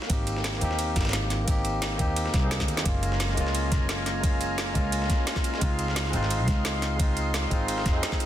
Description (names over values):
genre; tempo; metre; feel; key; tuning
liquid drum and bass; 174 BPM; 4/4; straight; F# major; A4 = 441 Hz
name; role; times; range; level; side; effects
dusty soul sampler-style drum kit; drums; 0.0-8.3 s; ride cymbal, snare drum; -34 LUFS; right 1 dB; high-pass filter on cymbals, high-pass filter on snare, high-pass filter on room
barky tine electric piano; accompaniment; 0.1-8.3 s; G#3 to G#4; -30 LUFS; equal; ping-pong delay
upright bass; bass; 0.1-8.0 s; F#1 to E#2; -29 LUFS; equal; none
electronic kick drum; drums; 0.1-8.2 s; none; -26 LUFS; equal; overdrive
garage drum kit; drums; 0.1-8.3 s; hi-hat, snare drum; -32 LUFS; right 1 dB; overdrive
lush unison pad; sustained chords; 2.9-8.3 s; D#5 to B#5; -35 LUFS; left 1 dB; chorus, sidechain pumping
room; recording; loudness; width
light reverb; dense, heavily limited modern master; -24 LUFS; side -11 dB against mid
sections
0.0-8.3 A section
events
drum fill 2.6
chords
0.0 G#maj9; 2.9 F#maj9; 5.6 C#maj9